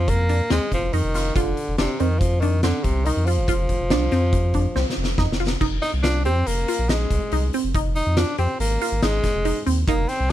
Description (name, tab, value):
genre	progressive instrumental, band music in an uneven meter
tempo	141 BPM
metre	5/4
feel	straight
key	F dorian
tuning	A4 = 440 Hz
part	bright tenor saxophone	melody	0.0-10.3 s	C3 to Eb4	-25 LUFS	equal	none
part	resonant blip pluck	arpeggios	0.0-10.2 s	C4 to G4	-26 LUFS	right 2 dB	phaser
part	warm sub bass	bass	0.0-10.3 s	F1 to F2	-22 LUFS	equal	none
part	oversized low-tuned drum kit	drums	0.1-10.2 s	crash cymbal, hi-hat, kick drum, snare drum	-25 LUFS	equal	none
room	little or no reverb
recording	none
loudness	-19 LUFS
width	side -13 dB against mid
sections	0.0-5.6 A section; 5.6-10.3 B section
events	drum fill 4.8-5.6; tenor saxophone solo 5.6-10.3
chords	0.0 F5; 5.6 Fm7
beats	0.07 0.50 0.93 | 1.35 1.78 2.20 2.63 3.06 | 3.48 3.91 4.33 4.76 5.19 | 5.61 6.04 6.47 6.89 7.32 | 7.75 8.17 8.60 9.02 9.45 | 9.88 10.30